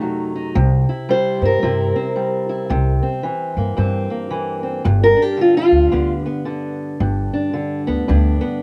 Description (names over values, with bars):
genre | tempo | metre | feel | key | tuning
acoustic country blues, solo or duo | 112 BPM | 4/4 | swing 61% on 8ths | C mixolydian | A4 = 439 Hz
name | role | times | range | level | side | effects
fingerpicked steel-string acoustic guitar | melody | 0.0-8.6 s | F#2 to C5 | -20 LUFS | equal | none
upright bass | bass | 0.6-8.4 s | G1 to G2 | -20 LUFS | equal | none
room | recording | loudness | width
little or no reverb | recorded outdoors, with no room sound | -18 LUFS | mono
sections
0.0-8.6 A section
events
steel-string acoustic guitar solo 0.0-8.6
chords
0.0 F#dim7; 0.6 C7; 4.9 G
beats
0.02 | 0.55 1.09 1.63 2.17 | 2.71 3.24 3.78 4.32 | 4.86 5.40 5.93 6.47 | 7.01 7.55 8.09